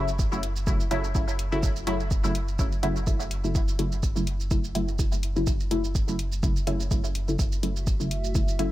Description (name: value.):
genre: dub techno.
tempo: 125 BPM.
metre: 4/4.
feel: swing 55% on 16ths.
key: F# minor.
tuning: A4 = 442 Hz.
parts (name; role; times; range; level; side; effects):
filtered dub chord stab; stabs; 0.0-8.7 s; C#3 to E4; -29 LUFS; left 1 dB; chorus, phaser, cassette tape, sidechain pumping, dub echo.
warm sub bass; bass; 0.0-8.7 s; F#1; -30 LUFS; equal; tube saturation, sidechain pumping.
electronic shaker and hi-hat; drums; 0.1-8.7 s; none; -38 LUFS; right 2 dB; none.
electronic kick drum; drums; 0.2-8.5 s; none; -26 LUFS; equal; none.
dark analog pad; sustained chords; 7.4-8.7 s; A3 to E5; -36 LUFS; right 3 dB; chorus, sidechain pumping.
room: little or no reverb.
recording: none.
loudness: -24 LUFS.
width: side -15 dB against mid.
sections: 0.0-7.4 A section; 7.4-8.7 A section.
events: none.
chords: 0.0 F#m7.